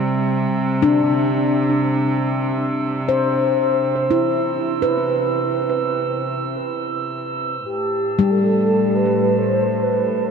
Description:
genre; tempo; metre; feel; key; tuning
ambient; free time; none; none; C major; A4 = 444 Hz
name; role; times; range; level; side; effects
handpan; arpeggios; 0.0-10.3 s; G3 to C5; -19 LUFS; left 1 dB; tape echo
rich studio cello section; bass; 0.0-10.3 s; A2 to C3; -24 LUFS; right 1 dB; none
glass harmonica; texture; 0.0-10.3 s; A5 to E6; -29 LUFS; right 4 dB; stereo widening
warm velvety synth lead; melody; 7.7-10.3 s; G4 to C5; -19 LUFS; right 2 dB; chorus
room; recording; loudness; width
wet huge ambient reverb, RT60 8.2 s; in a vast, echoing space; -17 LUFS; side -6 dB against mid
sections
0.0-10.3 A section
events
fade-in on glass harmonica 0.0-10.3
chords
0.0 C; 7.7 Am9

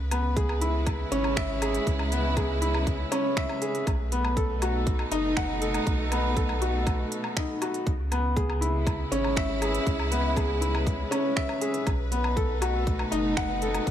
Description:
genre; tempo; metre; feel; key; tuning
piano and strings electronica; 120 BPM; 4/4; straight; C# minor; A4 = 437 Hz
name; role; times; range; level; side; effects
clear symphonic string section; sustained chords; 0.0-13.9 s; B2 to B4; -33 LUFS; right 2 dB; sidechain pumping
warm sub bass; bass; 0.0-13.9 s; F#1 to C#2; -29 LUFS; equal; sidechain pumping
clear upright piano; riff; 0.1-13.9 s; B3 to F#5; -28 LUFS; left 1 dB; ping-pong delay
organic electronic drum kit; drums; 0.1-13.9 s; finger snaps, hi-hat, woodblock; -35 LUFS; equal; none
electronic kick drum; drums; 0.4-13.9 s; none; -28 LUFS; equal; none
room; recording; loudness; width
light reverb; none; -24 LUFS; side -10 dB against mid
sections
0.0-13.9 A section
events
none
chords
0.0 C#m7; 3.9 B7; 7.9 C#m7; 11.9 B7

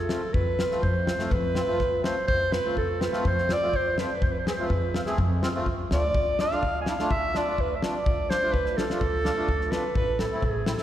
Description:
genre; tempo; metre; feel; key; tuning
klezmer; 124 BPM; 4/4; straight; D dorian sharp4; A4 = 441 Hz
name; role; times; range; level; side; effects
warm clarinet; melody; 0.0-10.8 s; G#4 to G#5; -27 LUFS; right 1 dB; none
upright bass; bass; 0.0-10.7 s; A1 to F2; -30 LUFS; equal; none
accordion; accompaniment; 0.1-10.8 s; A3 to G#4; -32 LUFS; equal; light tremolo tuning
damped 70s drum kit; drums; 0.1-10.8 s; kick drum, snare drum; -30 LUFS; left 1 dB; none
room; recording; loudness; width
wet church reverb, RT60 2.8 s; recorded in a church or concert hall; -23 LUFS; side -12 dB against mid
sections
0.0-10.8 A section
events
speeding up 0.0-10.8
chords
0.0 F; 6.1 Dm; 10.0 Am

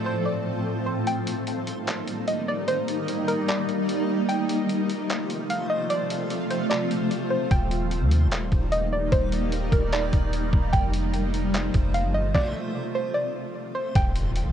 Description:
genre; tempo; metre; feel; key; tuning
hip hop, atmospheric cloud-rap; 149 BPM; 4/4; half-time; unclear; A4 = 440 Hz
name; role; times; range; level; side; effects
soft round pluck; melody; 0.0-14.5 s; Bb4 to G5; -29 LUFS; equal; chorus, ping-pong delay
shimmering ambient pad; sustained chords; 0.0-14.5 s; A2 to A4; -27 LUFS; equal; chorus, built-in reverb, phaser, sidechain pumping
backwards swelling texture; texture; 0.0-13.9 s; G3 to D5; -37 LUFS; equal; built-in reverb
trip hop sampler-style drum kit; drums; 1.1-14.5 s; handclaps, hi-hat, kick drum, snare drum; -26 LUFS; equal; vintage 12-bit sampler grit
soft 808-style bass; bass; 7.5-14.5 s; Eb1 to Eb2; -25 LUFS; equal; none
impact; sound effects; 14.0-14.5 s; none; -28 LUFS; equal; none
room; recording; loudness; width
light reverb; worn, warbling old tape, cassette tape, warbly pitch drift; -22 LUFS; side -9 dB against mid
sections
0.0-1.1 A section; 1.1-14.0 B section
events
kick muted 1.1-7.5; stop 12.3-14.0; impact 14.0-14.5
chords
0.0 F; 1.1 Ebmaj7; 4.3 F; 7.5 Ebmaj7; 10.7 F; 14.0 Ebmaj7

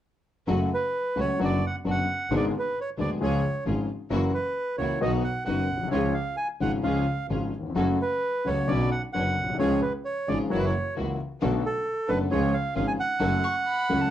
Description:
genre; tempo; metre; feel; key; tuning
tango; 132 BPM; 4/4; rubato; F# harmonic minor; A4 = 440 Hz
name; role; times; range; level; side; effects
warm concert grand piano; accompaniment; 0.5-14.1 s; D1 to A4; -27 LUFS; left 3 dB; none
bright studio string section; stabs; 0.5-14.1 s; A3 to B4; -36 LUFS; right 1 dB; none
clear double bass; bass; 0.5-14.1 s; F#1 to D2; -30 LUFS; right 2 dB; none
bandoneon; melody; 0.7-14.1 s; A4 to G#5; -28 LUFS; right 2 dB; none
warm violin; second line; 13.4-14.1 s; A5 to C#6; -32 LUFS; left 3 dB; none
room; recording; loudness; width
moderate club reverb, RT60 0.7 s; worn, warbling old tape, cassette tape, warbly pitch drift; -24 LUFS; side -11 dB against mid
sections
0.5-14.1 A section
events
none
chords
0.5 F#m; 1.4 Bm/F#; 2.3 G#dim; 3.2 C#; 4.1 F#7; 5.0 B; 5.9 C#; 7.8 F#m; 8.7 Bmadd9; 9.6 C#; 10.5 F#7; 11.4 Bm7; 12.3 C#; 13.2 F#m

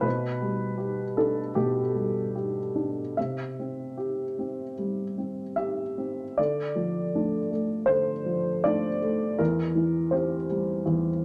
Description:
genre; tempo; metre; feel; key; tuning
neoclassical minimalist piano; 70-82 BPM; 4/4; rubato; D minor from 6.4 s; A4 = 441 Hz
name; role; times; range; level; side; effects
dark upright piano; solo; 0.0-11.2 s; E2 to E5; -28 LUFS; equal; none
room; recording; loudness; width
wet studio reverb, RT60 0.8 s; none; -28 LUFS; mono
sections
0.0-6.4 A section; 6.4-11.2 B section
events
none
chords
0.0 G/B; 3.2 C; 6.4 Dm; 9.4 C/E

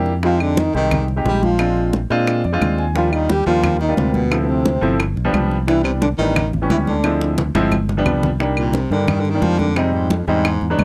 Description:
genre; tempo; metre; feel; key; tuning
Afro-Cuban jazz; 176 BPM; 4/4; straight; C minor; A4 = 441 Hz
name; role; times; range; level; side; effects
dark trombone; melody; 0.0-7.4 s; B3 to G4; -23 LUFS; equal; none
breathy baritone saxophone; second line; 0.0-10.8 s; F2 to G3; -26 LUFS; equal; none
warm baby grand piano; accompaniment; 0.0-10.8 s; Eb3 to Ab5; -24 LUFS; equal; none
fingered electric bass; bass; 0.0-10.8 s; G1 to Bb2; -23 LUFS; equal; none
bongos; percussion; 0.1-10.8 s; none; -29 LUFS; equal; none
congas; percussion; 0.1-10.8 s; none; -26 LUFS; equal; none
claves; percussion; 0.4-10.8 s; none; -29 LUFS; equal; none
room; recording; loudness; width
light reverb; dry, close 1970s-style studio recording; -18 LUFS; mono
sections
0.0-8.4 A section; 8.4-10.8 B section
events
grand piano fill 2.3-3.0; drum fill 7.0-8.4; baritone saxophone solo 8.4-10.8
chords
0.2 Fm7; 1.6 Bb7; 3.0 Ebmaj7; 4.3 Dm7; 5.0 G7; 5.7 Cmaj7; 6.4 A7; 7.0 Dm7b5; 7.7 G7; 8.4 Cm9; 9.8 Fm7

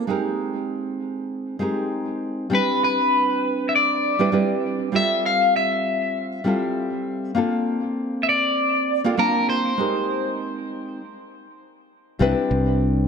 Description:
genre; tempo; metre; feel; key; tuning
sunset chillout; 99 BPM; 4/4; swing 58% on 16ths; C major; A4 = 442 Hz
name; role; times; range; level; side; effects
nylon-string guitar; accompaniment; 0.0-13.1 s; G3 to A5; -23 LUFS; moving between left 3 dB and right 5 dB; auto-pan, tape echo
electric guitar at the edge of break-up; melody; 2.5-11.6 s; Bb4 to F5; -21 LUFS; left 2 dB; phaser, tape echo
fingered electric bass; bass; 12.2-13.1 s; C2; -20 LUFS; right 1 dB; none
room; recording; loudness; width
wet recital hall reverb, RT60 1.6 s, small room ambience; none; -20 LUFS; side -6 dB against mid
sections
0.0-12.2 A section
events
break 11.0-12.2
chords
0.1 Abmaj9; 2.5 Cmaj9; 4.9 Fmaj9; 7.4 Bbmaj9; 9.8 Abmaj9; 12.2 Cmaj9

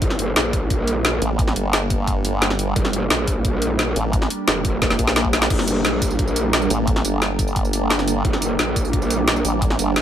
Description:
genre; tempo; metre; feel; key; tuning
dark technical drum and bass; 175 BPM; 4/4; straight; G minor; A4 = 438 Hz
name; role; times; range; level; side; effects
swarming drone; sustained chords; 0.0-10.0 s; G3 to D5; -24 LUFS; right 2 dB; built-in reverb, sidechain pumping
growl bass; bass; 0.0-9.4 s; F1 to Bb1; -22 LUFS; equal; distortion, chorus, overdrive, sidechain pumping
drum and bass drum kit; drums; 0.0-10.0 s; crash cymbal, hi-hat, snare drum, tambourine; -21 LUFS; equal; overdrive
electronic kick drum; drums; 0.0-9.7 s; none; -22 LUFS; equal; none
formant-sweep wobble bass; bass; 1.2-10.0 s; G1 to Bb1; -22 LUFS; equal; chorus
room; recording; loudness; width
little or no reverb; none; -17 LUFS; side -10 dB against mid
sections
0.0-10.0 A section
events
drum fill 4.8-5.5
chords
0.0 Gmadd9

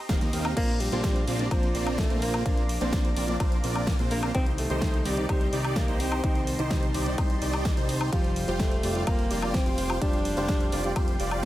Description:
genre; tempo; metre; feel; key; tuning
EDM, festival progressive house; 127 BPM; 4/4; straight; Bb major; A4 = 440 Hz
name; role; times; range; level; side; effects
lush unison pad; sustained chords; 0.0-11.5 s; Eb4 to D6; -40 LUFS; equal; chorus, sidechain pumping
dense compressed supersaw; riff; 0.1-11.5 s; Bb3 to F5; -32 LUFS; right 1 dB; sidechain pumping, digital delay
fat analog bass; bass; 0.1-11.5 s; Eb1 to Eb2; -32 LUFS; equal; sidechain pumping
big-room dance drum kit; drums; 0.1-11.5 s; crash cymbal, hi-hat, ride cymbal, snare drum, woodblock; -34 LUFS; left 1 dB; none
electronic kick drum; drums; 0.1-11.1 s; none; -27 LUFS; equal; none
breathy alto saxophone; melody; 0.6-10.9 s; F3 to D4; -32 LUFS; equal; digital delay
warm grand piano; accompaniment; 0.6-11.5 s; Eb3 to G4; -34 LUFS; left 1 dB; sidechain pumping, digital delay
room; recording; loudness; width
digital ambience; none; -24 LUFS; side -14 dB against mid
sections
0.0-11.5 A section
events
none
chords
0.0 Eb6; 0.6 Bbadd9; 4.3 Cm; 8.1 Fsus2

